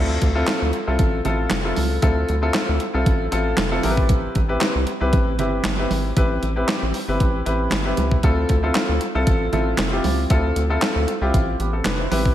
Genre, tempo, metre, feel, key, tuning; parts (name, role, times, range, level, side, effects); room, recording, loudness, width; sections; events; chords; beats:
early-eighties boogie funk; 116 BPM; 4/4; straight; D dorian; A4 = 442 Hz
clear baby grand piano; accompaniment; 0.0-12.3 s; B3 to C5; -23 LUFS; left 1 dB
rubbery square bass; bass; 0.0-12.3 s; F1 to D2; -23 LUFS; equal
clean 12-bit digital drum machine; drums; 0.2-12.3 s; handclaps, hi-hat, kick drum, snare drum; -22 LUFS; equal
congas; percussion; 0.2-12.2 s; -32 LUFS; right 8 dB
moderate lush hall reverb, RT60 2.0 s; big arena sound; -18 LUFS; side -12 dB against mid
0.0-12.3 A section
0.0 Dm9; 3.8 Am9; 8.2 Dm9
0.48 0.99 1.51 | 2.03 2.54 3.06 3.58 | 4.10 4.61 5.13 5.65 | 6.17 6.68 7.20 7.72 | 8.23 8.75 9.27 9.79 | 10.30 10.82 11.34 11.86